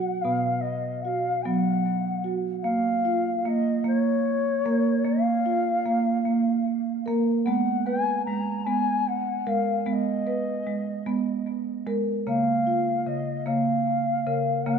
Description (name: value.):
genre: world meditative, meditative tuned percussion.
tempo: 50 BPM (dotted quarters).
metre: 6/8.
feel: straight.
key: unclear.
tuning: A4 = 439 Hz.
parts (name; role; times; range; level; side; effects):
mellow bansuri; melody; 0.0-14.8 s; Db5 to Bb5; -27 LUFS; left 3 dB; tape echo.
marimba with soft mallets; arpeggios; 0.0-14.8 s; B2 to Cb5; -25 LUFS; right 3 dB; tape echo.
room: wet echo chamber reverb, RT60 1.4 s, small room ambience.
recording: dark, warm production.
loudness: -23 LUFS.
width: side -6 dB against mid.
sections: 0.0-2.7 A section; 2.7-14.8 B section.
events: none.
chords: 0.0 B5; 2.7 Bbm; 7.5 Abm; 12.3 Db.